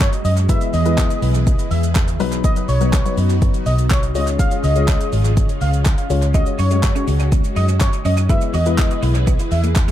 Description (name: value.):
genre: dance-pop.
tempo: 123 BPM.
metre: 4/4.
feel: straight.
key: unclear.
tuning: A4 = 444 Hz.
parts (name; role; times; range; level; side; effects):
wide unison lead; melody; 0.0-9.6 s; C#5 to E#5; -25 LUFS; right 1 dB; tape echo.
string machine, cellos; sustained chords; 0.0-9.9 s; C#3 to B4; -27 LUFS; equal; phaser, ensemble chorus, sidechain pumping.
vintage muted fingered electric bass; bass; 0.0-9.9 s; G#1 to F#2; -18 LUFS; equal; sidechain pumping.
deep house drum kit; drums; 0.0-9.9 s; handclaps, hi-hat, kick drum, shaker; -18 LUFS; equal; none.
downlifter; sound effects; 0.1-2.4 s; none; barely audible; none; none.
dark baby grand piano; accompaniment; 0.5-9.2 s; F#3 to C#5; -25 LUFS; left 8 dB; sidechain pumping, tape echo.
twelve-string electric guitar; riff; 6.3-9.9 s; G#3 to F#4; -29 LUFS; right 4 dB; ensemble chorus, tape echo.
room: little or no reverb.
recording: echo-heavy mix.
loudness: -15 LUFS.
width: side -12 dB against mid.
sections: 0.0-9.9 A section.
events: none.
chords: 0.5 E; 2.2 B; 4.2 C#; 6.3 F#sus2; 8.3 E.